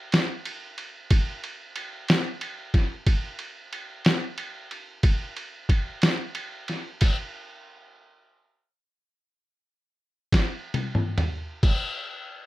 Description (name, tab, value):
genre	blues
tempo	44-61 BPM (dotted quarters)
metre	12/8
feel	straight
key	none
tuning	none
part	lo-fi sampler-style drum kit	drums	0.1-11.8 s	crash cymbal, kick drum, ride cymbal, snare drum, toms	-24 LUFS	equal	none
room	little or no reverb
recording	rough home demo mix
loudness	-24 LUFS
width	side -17 dB against mid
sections	0.0-11.6 A section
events	slowing down 5.7-11.6; stop 7.0-10.3; drum fill 10.3-11.6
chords	none